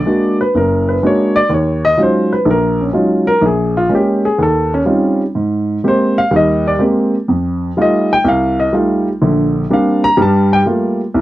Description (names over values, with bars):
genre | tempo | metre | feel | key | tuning
solo jazz | 125 BPM | 4/4 | swing 68% on 8ths | unclear | A4 = 442 Hz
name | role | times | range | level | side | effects
warm upright piano | solo | 0.0-11.2 s | F#1 to Bb5 | -11 LUFS | equal | none
room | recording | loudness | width
little or no reverb | dry, close 1970s-style studio recording | -11 LUFS | side -15 dB against mid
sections
0.0-11.2 A section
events
upright piano solo 0.0-11.2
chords
0.0 Bbaug7; 1.5 Ebm11; 3.4 Bbm7; 4.4 Eb13; 5.4 Abmaj9; 7.3 F9; 9.2 Bb69; 10.2 Gm9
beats
0.06 0.54 1.02 | 1.50 1.98 2.46 2.94 | 3.42 3.91 4.39 4.87 | 5.35 5.83 6.31 6.80 | 7.28 7.76 8.24 8.72 | 9.20 9.69 10.17 10.65 | 11.13